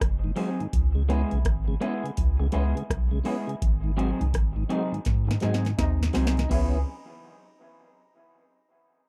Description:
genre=roots reggae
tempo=83 BPM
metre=4/4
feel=swing 63% on 16ths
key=C# minor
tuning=A4 = 440 Hz
part: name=soft dub sub bass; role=bass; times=0.0-6.8 s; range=F#1 to G#2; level=-28 LUFS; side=equal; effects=none
part: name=booming analog drum machine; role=drums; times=0.0-6.7 s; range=crash cymbal, hi-hat, kick drum, rim click, snare drum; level=-29 LUFS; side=equal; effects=none
part: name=mellow tonewheel organ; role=accompaniment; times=0.2-6.8 s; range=G#2 to F#4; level=-34 LUFS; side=equal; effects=chorus vibrato, stopped rotary speaker
part: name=electric guitar through a small old amp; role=accompaniment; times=0.4-6.8 s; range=E3 to G#4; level=-34 LUFS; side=equal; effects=spring reverb, dub echo
part: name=mellow trombone section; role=second line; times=4.7-6.8 s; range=B#2 to E4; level=-36 LUFS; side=equal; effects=dub echo
room=little or no reverb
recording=dry, close 1970s-style studio recording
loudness=-26 LUFS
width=mono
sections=0.0-6.5 A section; 6.5-9.1 B section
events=band accent 3.6-6.5; drum fill 5.1-6.5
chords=0.0 G#7; 0.7 C#m7; 3.6 G#7; 6.5 C#m7

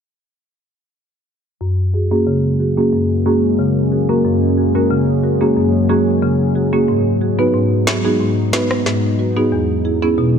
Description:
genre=dancehall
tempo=91 BPM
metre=4/4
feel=straight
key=unclear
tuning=A4 = 440 Hz
part: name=marimba with medium mallets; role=accompaniment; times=1.6-10.4 s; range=E2 to B4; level=-15 LUFS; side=equal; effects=low-pass filter
part: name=deep dark ambient pad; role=sustained chords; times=2.2-10.4 s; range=E3 to G#4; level=-19 LUFS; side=left 1 dB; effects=chorus, built-in reverb, low-pass filter
part: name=electronic snare drum and rim click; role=drums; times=7.9-9.0 s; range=none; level=-21 LUFS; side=left 1 dB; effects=none
room=light reverb, small room ambience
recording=none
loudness=-14 LUFS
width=side -7 dB against mid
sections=1.6-10.4 A section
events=filter sweep 1.6-10.4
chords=1.6 F#add9; 6.9 G#m7; 9.5 E6

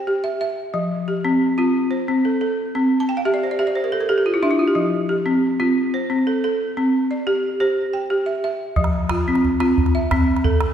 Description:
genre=west african traditional, West African string and xylophone music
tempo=120 BPM (dotted quarters)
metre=12/8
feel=straight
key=F major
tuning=A4 = 440 Hz
part: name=balafon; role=arpeggios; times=0.0-10.7 s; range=F3 to A5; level=-18 LUFS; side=equal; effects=none
part: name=calabash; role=percussion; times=8.8-10.7 s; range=none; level=-20 LUFS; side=right 1 dB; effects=none
room=wet concert hall reverb, RT60 1.8 s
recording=recorded in a church or concert hall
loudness=-18 LUFS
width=side -9 dB against mid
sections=0.0-8.8 A section; 8.8-10.7 A section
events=balafon fill 3.0-4.8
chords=0.0 C (rootless); 0.7 F; 2.8 C; 4.8 F; 6.8 C; 8.8 F

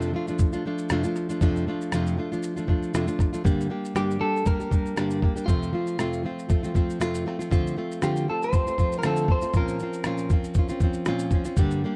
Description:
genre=acoustic pop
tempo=118 BPM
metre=4/4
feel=swing 55% on 16ths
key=F major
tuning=A4 = 438 Hz
part: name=nylon-string guitar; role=accompaniment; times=0.0-12.0 s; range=F2 to G4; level=-29 LUFS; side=equal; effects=none
part: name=dusty soul sampler-style drum kit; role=drums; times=0.0-11.8 s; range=kick drum, rim click, shaker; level=-26 LUFS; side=equal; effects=none
part: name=electric guitar at the edge of break-up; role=melody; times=4.0-11.3 s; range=F4 to C5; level=-32 LUFS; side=equal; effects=spring reverb
room=light reverb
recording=dark, warm production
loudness=-25 LUFS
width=mono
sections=0.0-3.4 A section; 3.4-12.0 B section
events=none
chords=0.0 F6; 3.4 Gm; 5.5 F; 7.5 Dm7; 9.5 Bbmadd9

